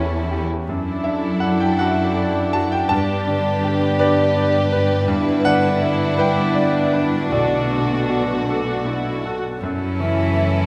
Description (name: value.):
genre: cinematic, emotional film score for orchestra.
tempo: 54 BPM (dotted quarters).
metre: 6/8.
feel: rubato.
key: D major.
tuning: A4 = 440 Hz.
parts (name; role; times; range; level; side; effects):
dark studio violin section; melody; 0.0-10.7 s; A4 to B4; -32 LUFS; equal; none.
rich studio violin section; second line; 0.0-10.7 s; C#4 to G4; -29 LUFS; equal; none.
bright grand piano; accompaniment; 0.0-10.7 s; B1 to A5; -24 LUFS; equal; none.
rich studio viola section; accompaniment; 0.0-9.6 s; C#4 to F#4; -30 LUFS; equal; none.
warm French horn section; sustained chords; 0.0-9.3 s; A3 to E4; -28 LUFS; equal; none.
concert harp; arpeggios; 0.0-10.7 s; E2 to D5; -30 LUFS; equal; none.
warm studio cello section; bass; 0.0-10.7 s; E2 to E3; -27 LUFS; equal; none.
warm chamber double bass section; bass; 9.6-10.7 s; F#2; -24 LUFS; equal; none.
large flute ensemble; second line; 10.0-10.7 s; E5; -27 LUFS; equal; none.
room: moderate scoring stage reverb, RT60 1.7 s.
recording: close, detailed microphones.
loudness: -19 LUFS.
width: mono.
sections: 0.0-9.6 A section; 9.6-10.7 A section.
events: none.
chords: 0.0 A7/E; 0.7 Dadd9/F#; 2.9 Gadd9; 5.1 Em7/G; 7.3 Bm7; 9.6 F#m7.